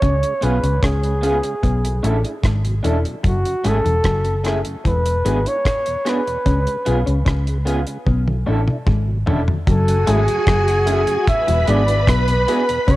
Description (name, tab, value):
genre	lovers rock reggae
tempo	75 BPM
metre	4/4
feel	straight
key	F# minor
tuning	A4 = 440 Hz
part	mellow flugelhorn	melody	0.0-13.0 s	F#4 to E5	-21 LUFS	equal	tape echo
part	mellow electric guitar	riff	0.0-13.0 s	E3 to C#4	-26 LUFS	left 4 dB	cassette tape
part	vintage muted fingered electric bass	bass	0.0-13.0 s	E1 to C#2	-19 LUFS	equal	none
part	deep reggae drum kit	drums	0.0-13.0 s	hi-hat, kick drum, rim click, toms	-20 LUFS	equal	cassette tape
part	mellow tonewheel organ	accompaniment	0.2-12.8 s	E2 to G#4	-33 LUFS	right 2 dB	none
part	clear concert grand piano	accompaniment	0.4-12.6 s	A3 to A4	-28 LUFS	left 2 dB	cassette tape, tape echo
part	electric guitar through a small old amp	stabs	0.4-12.6 s	A3 to A4	-27 LUFS	right 2 dB	tremolo, cassette tape
part	string machine, full ensemble	second line	9.7-13.0 s	F#4 to C#6	-23 LUFS	equal	ensemble chorus, cassette tape, tape echo
room	little or no reverb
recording	home recording on cassette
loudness	-16 LUFS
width	side -17 dB against mid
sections	0.0-9.7 A section; 9.7-13.0 B section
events	drum fill 8.1-9.7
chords	0.0 C#7; 1.6 Bm11; 3.2 F#m9; 4.9 E7; 6.5 C#7; 8.1 Bm11; 9.7 F#m9; 11.3 E7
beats	| 0.03 0.83 1.64 2.44 | 3.25 4.05 4.85 5.66 | 6.46 7.26 8.07 8.87 | 9.67 10.48 11.28 12.08 | 12.88